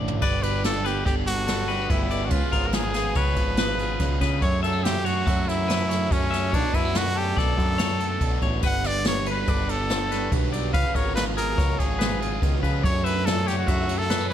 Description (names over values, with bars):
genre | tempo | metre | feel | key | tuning
math rock and midwest emo | 143 BPM | 5/4 | straight | unclear | A4 = 440 Hz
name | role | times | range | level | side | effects
twangy electric guitar | accompaniment | 0.0-14.3 s | D2 to F#4 | -34 LUFS | right 7 dB | spring reverb
clean electric guitar | arpeggios | 0.0-14.3 s | G#4 to E5 | -32 LUFS | left 10 dB | none
biting overdriven guitar | riff | 0.0-14.3 s | F#2 to G4 | -32 LUFS | right 1 dB | none
growling picked electric bass | bass | 0.0-14.3 s | G1 to C#3 | -28 LUFS | equal | overdrive
jazz brush drum kit | drums | 0.1-14.3 s | crash cymbal, kick drum, ride cymbal, snare drum, toms | -25 LUFS | equal | none
breathy trumpet | melody | 0.2-14.3 s | C#4 to F#5 | -28 LUFS | equal | slapback echo
room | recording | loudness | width
little or no reverb | none | -21 LUFS | side -10 dB against mid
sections
0.2-14.3 A section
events
drum fill 0.0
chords
0.2 Gmaj7; 2.3 C#7; 4.4 F#m7; 6.5 Bm9; 8.6 Gmaj7; 10.7 C#7; 12.8 F#m7